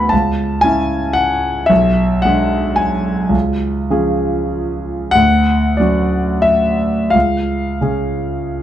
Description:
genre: classical, romantic nocturne for solo piano.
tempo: 30-39 BPM (dotted quarters).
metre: 6/8.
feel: rubato.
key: unclear.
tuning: A4 = 440 Hz.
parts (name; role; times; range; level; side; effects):
warm concert grand piano; solo; 0.0-8.6 s; B1 to B5; -13 LUFS; equal; none.
room: moderate large studio reverb, RT60 0.9 s.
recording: dark, warm production.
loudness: -13 LUFS.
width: side -11 dB against mid.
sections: 0.0-8.6 A section.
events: none.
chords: 0.1 C#madd11; 1.7 G#dim/B; 3.3 C#; 5.2 Dmaj7; 7.1 C#.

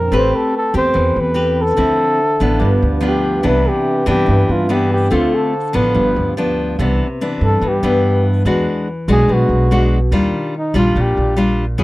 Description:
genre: bossa nova.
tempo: 144 BPM.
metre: 4/4.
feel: straight.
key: C major.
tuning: A4 = 440 Hz.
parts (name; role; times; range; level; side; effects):
breathy flugelhorn; melody; 0.0-11.4 s; Eb4 to C5; -18 LUFS; equal; none.
nylon-string guitar; accompaniment; 0.0-11.8 s; G2 to B4; -17 LUFS; left 2 dB; none.
vibraphone with soft mallets; accompaniment; 0.0-6.8 s; C4 to B5; -25 LUFS; right 2 dB; none.
upright bass; bass; 0.0-11.8 s; G1 to G2; -17 LUFS; right 1 dB; none.
room: light reverb.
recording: dry, close 1970s-style studio recording.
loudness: -13 LUFS.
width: side -18 dB against mid.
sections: 0.0-6.8 A section; 6.8-11.8 B section.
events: flugelhorn solo 6.8-11.8.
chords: 0.1 Am9; 1.8 Dm9; 2.6 G7; 3.4 Cmaj9; 5.1 Dm7; 5.9 G7; 6.8 Cmaj9; 8.5 E9; 10.1 Ebmaj9.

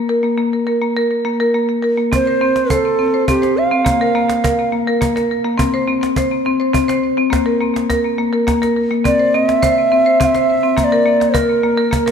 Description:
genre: world meditative, meditative tuned percussion.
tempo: 104 BPM.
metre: 3/4.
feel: straight.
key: Bb lydian.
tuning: A4 = 442 Hz.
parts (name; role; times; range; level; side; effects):
marimba with medium hard mallets; arpeggios; 0.0-12.1 s; Bb3 to C5; -15 LUFS; left 2 dB; ping-pong delay.
mellow hollow Native American-style cedar flute; melody; 2.1-4.7, 9.1-12.1 s; G4 to F5; -15 LUFS; right 3 dB; ping-pong delay.
cajon; percussion; 2.1-12.1 s; none; -22 LUFS; right 2 dB; none.
room: wet echo chamber reverb, RT60 1.9 s, small room ambience.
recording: none.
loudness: -13 LUFS.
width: side -7 dB against mid.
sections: 0.0-2.1 A section; 2.1-12.1 B section.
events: none.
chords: 0.0 N.C.; 2.1 F/C (rootless); 3.9 Bb5; 5.6 N.C.; 9.0 C; 10.8 Bb.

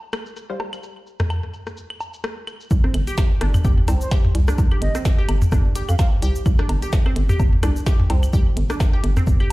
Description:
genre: minimal techno.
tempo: 128 BPM.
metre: 4/4.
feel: swing 56% on 16ths.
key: C minor.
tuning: A4 = 440 Hz.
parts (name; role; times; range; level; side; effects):
minimal click drum kit; drums; 0.1-9.5 s; hi-hat, shaker, snare drum; -33 LUFS; right 1 dB; low-pass filter on perc, small room reverb, low-pass filter on hats, low-pass filter on snare.
techno drum kit; percussion; 0.1-9.5 s; claves, rim click, toms, woodblock; -24 LUFS; left 1 dB; overdrive, small room reverb, digital delay.
filtered dub chord stab; stabs; 0.5-0.6 s; G3 to C5; -32 LUFS; left 2 dB; analog chorus, cassette tape, digital delay.
hollow knocking FM bass; bass; 2.7-9.4 s; G1 to F2; -20 LUFS; equal; sidechain pumping.
electronic kick drum; drums; 2.7-9.4 s; none; -19 LUFS; equal; small room reverb.
resonant blip pluck; riff; 2.8-9.4 s; C4 to G4; -30 LUFS; right 1 dB; phaser, cassette tape, sidechain pumping, digital delay.
bright reedy baroque flute; melody; 4.0-6.1 s; C5 to F5; -32 LUFS; right 2 dB; digital delay.
room: little or no reverb.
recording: played on a big sound system in a bare room, large studio reverb.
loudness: -17 LUFS.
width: side -19 dB against mid.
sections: 0.0-2.7 A section; 2.7-9.5 B section.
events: drop 2.7-9.5.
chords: 0.0 Csus4; 2.7 C5.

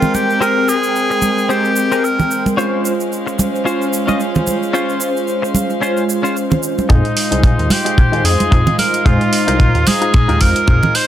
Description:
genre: nu-disco, nu disco.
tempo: 111 BPM.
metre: 4/4.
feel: swing 56% on 16ths.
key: F minor.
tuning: A4 = 440 Hz.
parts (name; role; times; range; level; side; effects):
edgy tenor saxophone; melody; 0.0-2.5, 6.9-11.1 s; Eb4 to C5; -18 LUFS; equal; low-pass filter, tape echo.
mellow synth brass; accompaniment; 0.0-11.1 s; Ab3 to G5; -19 LUFS; equal; chorus, sidechain pumping, tape echo.
dark studio violin section; sustained chords; 0.0-11.1 s; Ab3 to C6; -25 LUFS; left 1 dB; sidechain pumping.
direct-recorded clean electric guitar; riff; 0.0-11.0 s; C4 to Eb5; -21 LUFS; left 3 dB; analog chorus, low-pass filter, tape echo.
egg shaker and congas; percussion; 0.0-10.9 s; none; -19 LUFS; right 2 dB; none.
chorused synth bass; bass; 6.9-10.8 s; C2 to F2; -18 LUFS; equal; none.
house drum kit; drums; 6.9-11.1 s; hi-hat, toms; -18 LUFS; equal; none.
kick drum; drums; 6.9-10.8 s; none; -12 LUFS; equal; none.
room: light reverb, studio ambience.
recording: none.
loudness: -12 LUFS.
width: side -11 dB against mid.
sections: 0.0-6.9 A section; 6.9-11.1 B section.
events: filter sweep on violin section 0.0-6.9; build-up 6.9-11.1; drum fill 6.9-11.1; filter sweep on clean electric guitar 6.9-11.1; filter sweep on tenor saxophone 6.9-11.1.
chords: 0.0 Abmaj9; 2.6 Dbmaj7; 6.9 Fm7.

